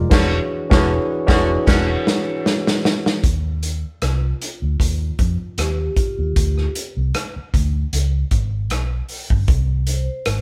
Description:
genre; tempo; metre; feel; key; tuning
lush 1970s-style soul; 77 BPM; 4/4; swing 54% on 16ths; unclear; A4 = 440 Hz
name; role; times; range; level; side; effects
tine electric piano; accompaniment; 0.0-3.3 s; E3 to F#5; -23 LUFS; equal; overdrive
vintage muted fingered electric bass; bass; 0.0-10.4 s; E1 to F2; -23 LUFS; equal; none
vibraphone with soft mallets; texture; 0.0-10.4 s; F4 to F5; -33 LUFS; equal; none
warm horn section; stabs; 0.1-1.9 s; D3 to F#4; -28 LUFS; equal; none
vintage drum kit; drums; 0.1-10.4 s; crash cymbal, hi-hat, kick drum, rim click, snare drum; -21 LUFS; equal; none
room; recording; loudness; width
light reverb; band playing live in one room; -20 LUFS; mono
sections
0.0-3.2 A section; 3.2-10.4 B section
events
drum fill 0.1-3.2; band accent 0.1-3.2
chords
0.1 E13; 3.2 Ebadd9; 6.4 Csus4 (rootless); 7.9 Db5; 9.5 N.C.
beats
| 0.11 0.89 1.67 2.46 | 3.24 4.02 4.80 5.58 | 6.36 7.14 7.92 8.71 | 9.49 10.27

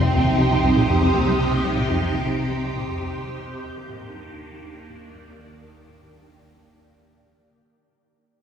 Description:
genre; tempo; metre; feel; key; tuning
ambient, sequencer-driven space music; 120 BPM; 4/4; straight; unclear; A4 = 439 Hz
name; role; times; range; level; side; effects
phased string machine; sustained chords; 0.0-7.6 s; C3 to G4; -22 LUFS; right 1 dB; ensemble chorus, phaser
plucky analog bass; riff; 0.0-7.6 s; C2 to Eb3; -23 LUFS; left 1 dB; wide subtle chorus, analog delay
warm sub bass; bass; 0.0-7.6 s; C2 to Eb2; -30 LUFS; equal; tube saturation
room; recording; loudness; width
wet cathedral reverb, RT60 5.8 s; in a vast, echoing space, small room ambience; -18 LUFS; side -8 dB against mid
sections
0.0-7.6 A section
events
fade-out on analog synth bass 0.0-7.6; fade-out 0.0-7.6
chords
0.0 Cm; 3.6 Ebmaj7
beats
0.13 0.63 1.13 | 1.63 2.13 2.63 3.13 | 3.63 4.13 4.63 5.13 | 5.63 6.13 6.63 7.13

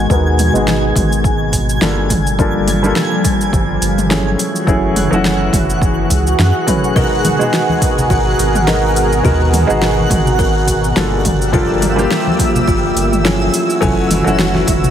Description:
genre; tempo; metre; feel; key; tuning
sunset chillout; 105 BPM; 4/4; swing 56% on 16ths; unclear; A4 = 440 Hz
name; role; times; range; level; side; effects
warm baby grand piano; accompaniment; 0.0-14.9 s; F#3 to G#5; -18 LUFS; left 1 dB; auto-pan, low-pass filter, tape echo
lush unison pad; sustained chords; 0.0-14.9 s; B2 to A#4; -19 LUFS; right 1 dB; chorus
round analog bass; bass; 0.0-14.9 s; F#1 to F#2; -18 LUFS; equal; none
twinkling granular texture; texture; 0.0-14.9 s; E5 to G#6; -24 LUFS; equal; built-in reverb
deep house drum kit; drums; 0.1-14.9 s; cabasa, hi-hat, snare drum, toms; -19 LUFS; right 1 dB; overdrive
electronic kick drum; drums; 0.1-14.8 s; none; -18 LUFS; equal; overdrive
buzzing kalimba; arpeggios; 7.0-14.7 s; F4 to A#4; -21 LUFS; left 1 dB; tape echo
congas; percussion; 7.0-14.9 s; none; -21 LUFS; left 2 dB; none
room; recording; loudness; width
moderate digital room reverb, RT60 1.1 s, digital ambience; heavily compressed radio sound; -12 LUFS; side -9 dB against mid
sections
0.0-14.9 A section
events
filter sweep on grand piano 0.0-14.9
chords
0.0 G#m9; 2.1 Gm9; 4.4 F#m9; 7.0 G#m9; 11.2 Gm9; 13.5 F#m9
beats
| 0.10 0.68 1.25 1.82 | 2.39 2.96 3.53 4.11 | 4.68 5.25 5.82 6.39 | 6.96 7.53 8.11 8.68 | 9.25 9.82 10.39 10.96 | 11.53 12.11 12.68 13.25 | 13.82 14.39

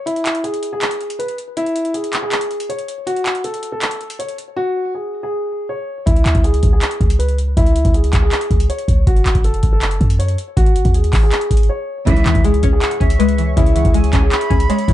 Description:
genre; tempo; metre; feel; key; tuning
hip hop, trap; 160 BPM; 4/4; half-time; C# minor; A4 = 439 Hz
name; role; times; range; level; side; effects
dark concert grand piano; melody; 0.0-14.9 s; E4 to C#5; -21 LUFS; left 1 dB; ping-pong delay
booming analog drum machine; drums; 0.1-14.9 s; handclaps, hi-hat, kick drum; -16 LUFS; equal; none
clean 808-style bass; bass; 6.1-14.9 s; F#1 to F#2; -16 LUFS; equal; none
bright silver concert flute; second line; 12.1-14.9 s; E5 to B5; -26 LUFS; right 5 dB; ping-pong delay
string-like resonator pluck; accompaniment; 12.1-14.9 s; C#3 to C#4; -20 LUFS; left 4 dB; chorus, phaser
warm analog pad; sustained chords; 12.1-14.9 s; G#4 to C#6; -29 LUFS; left 2 dB; chorus
clear studio string section; stabs; 12.1-12.4 s; G#2 to E3; -25 LUFS; right 5 dB; none
room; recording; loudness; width
digital ambience; dark, warm production, nothing above 10.5 kHz; -14 LUFS; side -14 dB against mid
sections
0.0-12.1 A section; 12.1-14.9 B section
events
break 0.1-6.1, 11.7-12.1; drums muted 4.6-6.1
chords
0.1 N.C.; 6.1 C#m; 9.1 F#m; 10.6 G#5; 12.1 C#m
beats
| 0.07 0.44 0.82 1.19 | 1.57 1.94 2.32 2.69 | 3.07 3.44 3.82 4.19 | 4.57 4.94 5.32 5.69 | 6.07 6.44 6.82 7.19 | 7.57 7.94 8.32 8.69 | 9.07 9.44 9.82 10.19 | 10.57 10.94 11.32 11.69 | 12.07 12.44 12.82 13.19 | 13.57 13.94 14.32 14.69

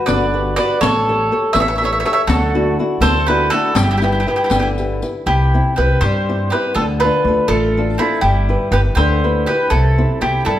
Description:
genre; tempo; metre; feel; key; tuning
italian folk, Italian serenade; 81 BPM (dotted quarters); 6/8; rubato; G major, C major from 5.3 s; A4 = 441 Hz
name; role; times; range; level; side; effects
bowl-back mandolin; melody; 0.0-10.6 s; E4 to E5; -18 LUFS; right 1 dB; none
bowl-back mandolin; second line; 0.0-10.6 s; C4 to C#5; -23 LUFS; right 3 dB; none
flamenco guitar; accompaniment; 0.0-10.6 s; C3 to C#5; -20 LUFS; left 2 dB; none
upright bass; bass; 0.1-10.6 s; G1 to G2; -18 LUFS; equal; none
riq; percussion; 0.1-5.1 s; none; -23 LUFS; left 3 dB; none
room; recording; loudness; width
moderate recital hall reverb, RT60 1.5 s; none; -13 LUFS; side -12 dB against mid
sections
0.0-5.3 A section; 5.3-10.6 B section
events
none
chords
0.0 Gmaj7; 0.8 A7; 2.3 Dadd9; 3.8 G6; 5.3 C; 6.8 Dm; 8.2 G6; 9.7 C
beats
0.08 | 0.82 1.55 | 2.28 3.02 | 3.75 4.51 | 5.27 6.01 | 6.75 7.49 | 8.22 8.97 | 9.71 10.46

